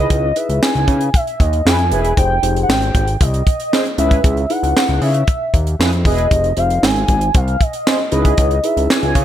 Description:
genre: early-eighties boogie funk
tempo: 116 BPM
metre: 4/4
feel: straight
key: unclear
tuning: A4 = 440 Hz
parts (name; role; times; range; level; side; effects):
- warm velvety synth lead; melody; 0.0-9.2 s; Eb5 to Ab5; -19 LUFS; left 1 dB; chorus, tape echo
- mellow synth brass; second line; 0.0-8.3 s; C4 to C5; -23 LUFS; right 3 dB; chorus
- mellow tine electric piano; accompaniment; 0.0-9.2 s; Db4 to C5; -23 LUFS; left 1 dB; phaser
- fat analog bass; bass; 0.0-9.2 s; Fb1 to Db3; -17 LUFS; equal; none
- tight funk drum kit; drums; 0.1-9.2 s; handclaps, hi-hat, kick drum, snare drum; -16 LUFS; equal; gated reverb
room: little or no reverb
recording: none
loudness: -13 LUFS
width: side -11 dB against mid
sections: 0.0-9.2 A section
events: none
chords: 0.0 Dbm9; 2.2 Fm9; 4.0 Dbm9; 6.3 Fm7; 8.1 Dbm9

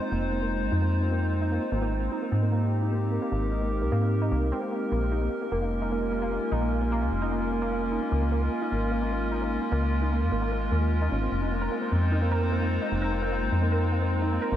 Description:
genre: IDM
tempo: 150 BPM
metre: 4/4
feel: straight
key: Bb dorian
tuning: A4 = 440 Hz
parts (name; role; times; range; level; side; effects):
- warbly tape-like pad; sustained chords; 0.0-14.6 s; Ab3 to C5; -29 LUFS; equal; chorus, built-in reverb
- warbly dusty pluck; arpeggios; 0.0-14.6 s; Bb3 to Bb4; -32 LUFS; right 1 dB; wide subtle chorus, diffuse ambient delay
- metallic FM bass; bass; 0.1-14.6 s; F1 to Ab2; -27 LUFS; equal; none
room: moderate huge ambient reverb, RT60 7.9 s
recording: dreamy mix soaked in reverb, nothing above 11.0 kHz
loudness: -24 LUFS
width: side -11 dB against mid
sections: 0.0-4.9 A section; 4.9-14.6 B section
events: break 4.5-4.9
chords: 0.0 Fm7; 1.7 Abmaj9; 4.9 Bbm7; 8.1 Db6; 11.3 Fm7

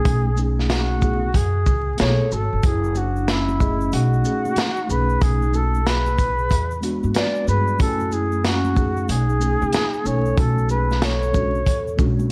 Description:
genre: hip hop, jazz-hop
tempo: 93 BPM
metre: 4/4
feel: swing 65% on 16ths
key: unclear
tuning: A4 = 439 Hz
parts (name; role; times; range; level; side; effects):
- mellow flugelhorn; melody; 0.0-12.0 s; E4 to D5; -27 LUFS; equal; none
- mellow tine electric piano; accompaniment; 0.0-12.3 s; G#3 to G#5; -29 LUFS; equal; none
- upright bass; bass; 0.1-12.3 s; F#1 to G#2; -24 LUFS; equal; none
- crunchy breakbeat drum kit; drums; 0.1-12.2 s; hi-hat, kick drum, shaker, snare drum; -25 LUFS; equal; none
- vibraphone with soft mallets; second line; 2.0-12.0 s; C#4 to B4; -32 LUFS; equal; analog delay
- tube shaker and congas; percussion; 2.6-12.3 s; none; -39 LUFS; equal; none
room: little or no reverb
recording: vinyl crackle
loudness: -20 LUFS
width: mono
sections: 0.0-2.6 A section; 2.6-12.3 A section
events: none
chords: 0.0 B13; 1.3 F#m11; 2.6 F#m9; 3.9 B13; 6.5 E9; 7.8 F#m9; 9.1 B13; 11.7 E13

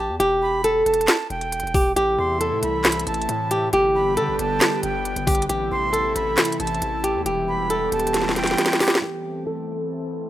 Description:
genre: hip hop, trap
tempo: 136 BPM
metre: 4/4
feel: half-time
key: A minor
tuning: A4 = 440 Hz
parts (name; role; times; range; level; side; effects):
- flamenco guitar; melody; 0.0-10.3 s; G4 to A4; -22 LUFS; equal; low-pass filter
- breathy bright jazz flute; second line; 0.0-9.0 s; G5 to C6; -27 LUFS; right 2 dB; tape echo
- distorted 808-style bass; bass; 0.0-8.6 s; E1 to D3; -31 LUFS; equal; distortion
- trap drum kit; drums; 0.2-9.1 s; handclaps, hi-hat, kick drum, snare drum; -21 LUFS; equal; none
- airy breathy pad; sustained chords; 2.0-10.3 s; C3 to A4; -28 LUFS; equal; chorus, low-pass filter
room: digital ambience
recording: rough home demo mix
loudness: -19 LUFS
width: side -13 dB against mid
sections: 0.0-9.0 A section; 9.0-10.3 B section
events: drum fill 8.1-9.0; filter sweep 9.0-10.3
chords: 0.2 Em; 2.0 Am; 3.7 G; 5.5 Am; 7.3 Em; 9.0 Am

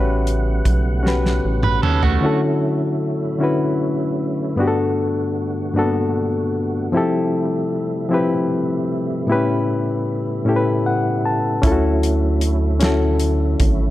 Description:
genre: slow six-eight R&B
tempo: 51 BPM (dotted quarters)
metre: 6/8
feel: straight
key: D major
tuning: A4 = 440 Hz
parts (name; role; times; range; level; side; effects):
- reed electric piano; accompaniment; 0.0-13.9 s; G2 to A5; -19 LUFS; left 2 dB; none
- tonewheel organ; sustained chords; 0.0-13.9 s; C3 to F#5; -27 LUFS; right 4 dB; overdrive, chorus vibrato, slow rotary speaker
- rubbery square bass; bass; 0.0-2.2, 11.6-13.9 s; G#1 to Eb2; -19 LUFS; right 1 dB; none
- damped 70s drum kit; drums; 0.3-2.2, 11.6-13.8 s; hi-hat, kick drum, snare drum, toms; -20 LUFS; right 1 dB; none
- electric guitar at the edge of break-up; second line; 1.6-2.4 s; A3 to B4; -22 LUFS; right 7 dB; none
room: light reverb, small room ambience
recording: none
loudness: -17 LUFS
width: side -15 dB against mid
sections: 0.0-2.2 A section; 2.2-13.9 B section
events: drum fill 1.0-2.2; reed electric piano fill 10.5-11.6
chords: 0.0 A13; 2.2 Dmaj9; 4.6 Gmaj9; 6.9 Fmaj9; 9.3 A9; 11.6 Dmaj9

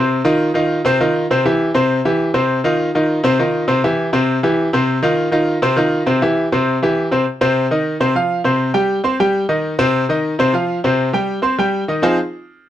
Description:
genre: latin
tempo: 201 BPM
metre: 4/4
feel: straight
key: unclear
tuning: A4 = 440 Hz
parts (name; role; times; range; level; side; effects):
- bright grand piano; solo; 0.0-12.2 s; C3 to C6; -14 LUFS; equal; none
room: light reverb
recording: dry, close 1970s-style studio recording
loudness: -14 LUFS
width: side -12 dB against mid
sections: 0.0-7.3 A section; 7.3-12.0 B section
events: none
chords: 0.1 F5; 1.3 C; 2.5 F5; 3.7 C; 4.9 F5; 6.1 C; 7.3 F5; 8.4 C5; 9.6 F5; 10.8 C5; 12.0 Fm7

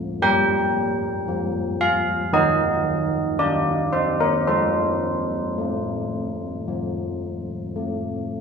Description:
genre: classical, tune for church bells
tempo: 55 BPM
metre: 4/4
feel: straight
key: unclear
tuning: A4 = 440 Hz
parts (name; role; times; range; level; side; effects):
- old church bells; solo; 0.0-8.4 s; Eb3 to G5; -20 LUFS; equal; none
room: moderate recital hall reverb, RT60 1.7 s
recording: close, detailed microphones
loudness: -20 LUFS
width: side -6 dB against mid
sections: 0.0-8.4 A section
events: none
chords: 0.2 Gm; 2.3 Cm9/Eb; 4.5 F

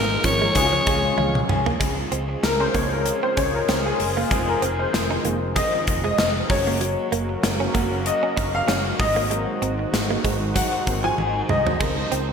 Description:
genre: 1980s-style pop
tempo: 96 BPM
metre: 4/4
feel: swing 55% on 16ths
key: Db major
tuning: A4 = 438 Hz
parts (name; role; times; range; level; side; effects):
- raspy alto saxophone; melody; 0.0-1.5 s; Bb4 to Db5; -23 LUFS; left 1 dB; ping-pong delay
- clear baby grand piano; accompaniment; 0.0-12.3 s; Ab2 to Ab5; -24 LUFS; left 3 dB; ensemble chorus
- crunchy overdriven guitar; accompaniment; 0.0-12.3 s; Db3 to Ab4; -35 LUFS; equal; lush chorus
- sweeping resonant pad; sustained chords; 0.0-12.3 s; Bb2 to C5; -29 LUFS; right 1 dB; chorus
- analog synth brass; stabs; 0.0-0.7 s; F3 to Bb4; -30 LUFS; left 2 dB; chorus
- fretless electric bass; bass; 0.0-12.3 s; F1 to Db2; -28 LUFS; equal; none
- direct-recorded clean electric guitar; riff; 0.2-12.3 s; F3 to Eb4; -30 LUFS; right 6 dB; wide subtle chorus, ping-pong delay
- gated 80s drum kit; drums; 0.2-12.3 s; crash cymbal, hi-hat, kick drum, snare drum, toms; -24 LUFS; equal; gated reverb
room: wet plate reverb, RT60 2.8 s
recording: bright 1980s-style digital production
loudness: -19 LUFS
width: side -6 dB against mid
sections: 0.0-1.8 A section; 1.8-12.3 B section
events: band accent 0.0-1.8; grand piano fill 0.9-1.8; drum fill 1.2-1.8, 11.2-11.8; grand piano solo 1.8-12.3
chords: 0.0 Abadd9; 0.6 Db; 1.8 Dbmaj7; 4.3 Fm7; 6.5 Gb; 9.0 Ab7; 11.8 Dbmaj7

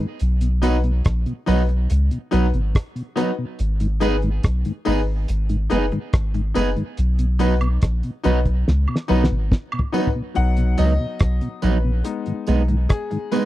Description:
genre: roots reggae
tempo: 71 BPM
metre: 4/4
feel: straight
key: B major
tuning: A4 = 440 Hz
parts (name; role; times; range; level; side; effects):
- mellow tonewheel organ; accompaniment; 0.0-13.4 s; G#2 to D#4; -25 LUFS; left 1 dB; chorus vibrato, slow rotary speaker
- soft dub sub bass; bass; 0.2-12.9 s; F#1 to C#2; -19 LUFS; equal; none
- cloth-damped thuddy drum kit; drums; 0.2-13.5 s; hi-hat, kick drum, rim click, snare drum, toms; -19 LUFS; equal; none
- electric guitar at the edge of break-up; accompaniment; 0.6-13.5 s; F#3 to G#4; -26 LUFS; right 7 dB; tape echo
- clear grand piano; stabs; 0.6-13.5 s; F#3 to F#5; -26 LUFS; left 7 dB; none
- tambourine and woodblock; percussion; 0.6-13.5 s; none; -36 LUFS; right 4 dB; none
room: little or no reverb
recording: dry, close 1970s-style studio recording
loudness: -18 LUFS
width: side -15 dB against mid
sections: 0.0-10.4 A section; 10.4-13.5 B section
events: drum fill 8.7-10.4; grand piano solo 10.4-13.5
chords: 0.2 B; 3.6 G#m; 7.0 B; 12.0 G#m

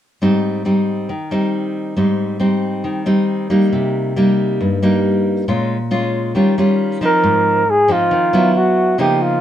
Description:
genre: bossa nova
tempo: 137 BPM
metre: 4/4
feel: straight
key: Ab major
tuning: A4 = 440 Hz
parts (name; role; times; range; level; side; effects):
- nylon-string guitar; accompaniment; 0.2-9.4 s; G2 to F4; -15 LUFS; equal; none
- mellow flugelhorn; melody; 7.1-9.4 s; F4 to Bb4; -14 LUFS; right 1 dB; none
room: light reverb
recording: minimal, uncompressed stereo recording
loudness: -14 LUFS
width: side -11 dB against mid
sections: 0.2-7.2 A section; 7.2-9.4 B section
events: none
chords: 0.2 Abmaj7; 3.7 Cm7; 5.5 Bbm7; 6.4 Eb9; 7.2 Ab6; 8.5 Gb7sus4

